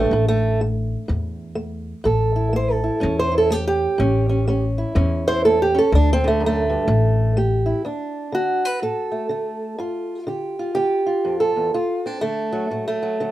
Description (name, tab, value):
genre	acoustic country blues, solo or duo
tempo	124 BPM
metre	4/4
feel	swing 62% on 8ths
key	unclear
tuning	A4 = 440 Hz
part	fingerpicked old ladder-braced acoustic guitar	melody	0.0-13.3 s	D2 to C5	-20 LUFS	right 1 dB	none
part	upright bass	bass	0.0-7.7 s	A1 to E2	-21 LUFS	left 1 dB	none
room	light reverb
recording	minimal, uncompressed stereo recording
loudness	-18 LUFS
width	side -14 dB against mid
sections	0.0-7.8 A section; 7.8-13.3 B section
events	steel-string acoustic guitar solo 0.0-7.8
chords	0.1 A7; 5.9 D; 6.9 A5; 7.8 D; 9.8 G5; 11.7 D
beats	| 0.11 0.59 1.08 1.56 | 2.05 2.53 3.02 3.50 | 3.98 4.46 4.95 5.43 | 5.91 6.39 6.88 7.36 | 7.85 8.33 8.82 9.30 | 9.79 10.28 10.76 11.25 | 11.74 12.22 12.71 13.20